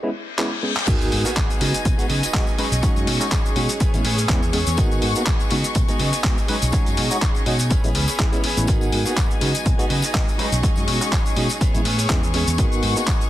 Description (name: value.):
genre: filtered disco house.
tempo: 123 BPM.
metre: 4/4.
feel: swing 55% on 16ths.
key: unclear.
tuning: A4 = 439 Hz.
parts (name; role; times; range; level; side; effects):
overdriven tine electric piano; accompaniment; 0.0-13.0 s; G#3 to B4; -27 LUFS; right 1 dB; fast tremolo, phaser, sidechain pumping, low-pass filter.
reverse cymbal and sub drop; sound effects; 0.1-2.8 s; none; -31 LUFS; left 3 dB; none.
dusty soul sampler-style drum kit; drums; 0.4-13.3 s; cabasa, crash cymbal, handclaps, hi-hat; -25 LUFS; left 1 dB; overdrive.
clear symphonic string section; sustained chords; 0.9-13.3 s; F#4 to C#6; -28 LUFS; left 4 dB; sidechain pumping, low-pass filter.
direct-recorded clean electric guitar; riff; 0.9-13.3 s; E3 to G#4; -29 LUFS; right 4 dB; sidechain pumping, low-pass filter.
fingered electric bass; bass; 0.9-12.9 s; G#1 to C#3; -23 LUFS; equal; sidechain pumping, low-pass filter.
electronic kick drum; drums; 0.9-13.2 s; none; -21 LUFS; equal; none.
tambourine; percussion; 0.9-13.3 s; none; -35 LUFS; left 6 dB; sidechain pumping on perc, low-pass filter on perc.
room: digital ambience.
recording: dense, heavily limited modern master.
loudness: -18 LUFS.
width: side -14 dB against mid.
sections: 0.9-13.3 A section.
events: break 0.0-0.9; reverse cymbal 0.1-0.9; drum fill 0.4-0.9; band accent 0.8; drop 0.9-13.3; impact 0.9-2.8.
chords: 0.0 G#madd11; 0.9 G#m7; 1.6 B69; 3.8 Amaj9; 4.8 G#m7; 5.5 B69; 7.7 Amaj9; 8.7 G#m7; 9.4 B69; 11.6 Amaj9; 12.6 G#m7.